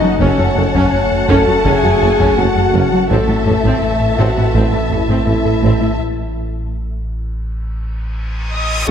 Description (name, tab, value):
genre	cinematic, hybrid orchestral and electronic film score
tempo	83 BPM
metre	4/4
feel	straight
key	unclear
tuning	A4 = 441 Hz
part	dark symphonic violin section	melody	0.0-8.9 s	A4 to D#6	-23 LUFS	left 4 dB	none
part	warm symphonic violin section	second line	0.0-8.9 s	C#5 to A5	-23 LUFS	left 2 dB	none
part	warm symphonic viola section	accompaniment	0.0-8.9 s	A3 to A4	-22 LUFS	right 2 dB	none
part	dark French horn section	sustained chords	0.0-8.9 s	A3 to A4	-18 LUFS	left 4 dB	none
part	deep dark ambient pad	sustained chords	0.0-8.9 s	E3 to A4	-26 LUFS	right 3 dB	none
part	warm trombone section	sustained chords	0.0-8.9 s	E3 to A3	-25 LUFS	right 6 dB	none
part	soft round pluck	arpeggios	0.0-8.9 s	F#3 to A4	-26 LUFS	right 4 dB	none
part	rubbery square bass	riff	0.0-8.9 s	F#2 to A3	-20 LUFS	left 2 dB	none
part	punchy sub bass	bass	0.0-8.9 s	F#1 to A1	-23 LUFS	equal	none
part	rich symphonic cello section	bass	0.0-8.9 s	F#2 to A4	-23 LUFS	right 3 dB	none
part	rich symphonic double bass section	bass	0.2-8.9 s	F#1 to F#2	-24 LUFS	right 4 dB	none
part	warm tuba	bass	0.2-8.9 s	F#1 to A1	-24 LUFS	right 4 dB	none
part	taiko ensemble	drums	0.2-8.9 s	none	-24 LUFS	equal	none
part	reverse cymbal and sub drop	sound effects	8.1-8.9 s	none	-24 LUFS	left 1 dB	none
room	wet concert hall reverb, RT60 2.2 s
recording	none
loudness	-13 LUFS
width	side -8 dB against mid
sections	0.0-8.9 A section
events	break 6.0-8.9; reverse cymbal 8.1-8.9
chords	0.0 F#m; 3.1 Am